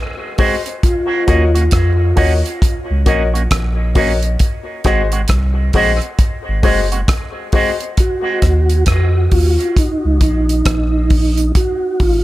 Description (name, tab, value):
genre	dub reggae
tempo	67 BPM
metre	4/4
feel	swing 63% on 16ths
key	Eb dorian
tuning	A4 = 440 Hz
part	electric guitar with an envelope filter	accompaniment	0.4-7.7 s	Ab3 to Gb4	-22 LUFS	right 5 dB	dub echo
part	clear concert grand piano	stabs	0.4-7.9 s	Gb4 to Eb5	-22 LUFS	left 6 dB	dub echo
part	damped 70s drum kit	drums	0.4-12.2 s	hi-hat, kick drum, rim click	-16 LUFS	equal	none
part	mellow tonewheel organ	melody	0.8-1.6, 8.0-12.2 s	Eb4 to Gb4	-19 LUFS	right 1 dB	chorus vibrato, fast rotary speaker, dub echo
part	soft dub sub bass	bass	1.3-12.2 s	Gb1 to F2	-15 LUFS	equal	none
room	light reverb, small room ambience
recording	none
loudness	-12 LUFS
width	side -16 dB against mid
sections	0.0-12.2 A section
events	break 0.0-0.8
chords	0.0 Ab7; 0.8 Ebm7; 4.4 Ab7; 8.0 Ebm; 11.6 Ab7(no3)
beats	| 0.83 1.72 2.62 3.51 | 4.41 5.30 6.19 7.09 | 7.98 8.87 9.77 10.66 | 11.56